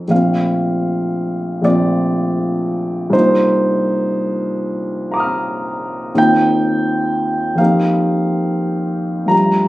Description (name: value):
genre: classical, impressionist solo piano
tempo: 39 BPM (dotted quarters)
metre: 6/8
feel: uneven beats, rubato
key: Bb major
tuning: A4 = 438 Hz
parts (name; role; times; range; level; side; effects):
- clear grand piano; solo; 0.0-9.7 s; Bb1 to F6; -14 LUFS; equal; none
room: light reverb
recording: recorded on a phone in the room, club reverb, compression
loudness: -14 LUFS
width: side -17 dB against mid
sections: 0.0-9.7 A section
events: none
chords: 0.1 Bbmaj9; 3.1 Cm11; 6.2 Eb69; 7.6 F9sus4